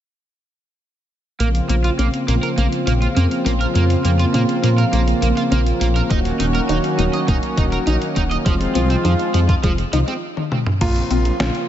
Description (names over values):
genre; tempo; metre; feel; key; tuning
synthwave; 102 BPM; 4/4; straight; Bb minor; A4 = 439 Hz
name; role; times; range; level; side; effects
brassy analog pad; sustained chords; 1.4-11.7 s; Db3 to Gb4; -21 LUFS; equal; chorus, sidechain pumping
analog pluck; arpeggios; 1.4-11.6 s; Ab3 to Eb4; -27 LUFS; left 1 dB; chorus, cassette tape, diffuse ambient delay
crunchy overdriven guitar; riff; 1.4-10.1 s; F3 to Eb5; -25 LUFS; right 4 dB; analog chorus, low-pass filter, diffuse ambient delay
dark detuned saw bass; bass; 1.4-11.5 s; Eb1 to Bb2; -18 LUFS; equal; tube saturation
detuned 8-bit digital drum machine; drums; 1.4-11.7 s; crash cymbal, hi-hat, snare drum, toms; -26 LUFS; left 1 dB; overdrive
electronic kick drum; drums; 6.1-10.9 s; none; -20 LUFS; equal; overdrive
clear electric grand piano; melody; 10.8-11.7 s; F4; -24 LUFS; right 2 dB; tape echo
room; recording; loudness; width
light reverb, digital ambience; nothing above 7.8 kHz; -16 LUFS; side -11 dB against mid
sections
1.4-10.8 A section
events
stop 10.2-10.8; drum fill 10.4-10.8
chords
1.4 Bbmadd9; 6.1 Ebm7; 8.5 Fm7; 10.8 Bbmadd9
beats
| 1.40 1.99 2.58 3.17 | 3.75 4.34 4.93 5.52 | 6.11 6.69 7.28 7.87 | 8.46 9.05 9.63 10.22 | 10.81 11.40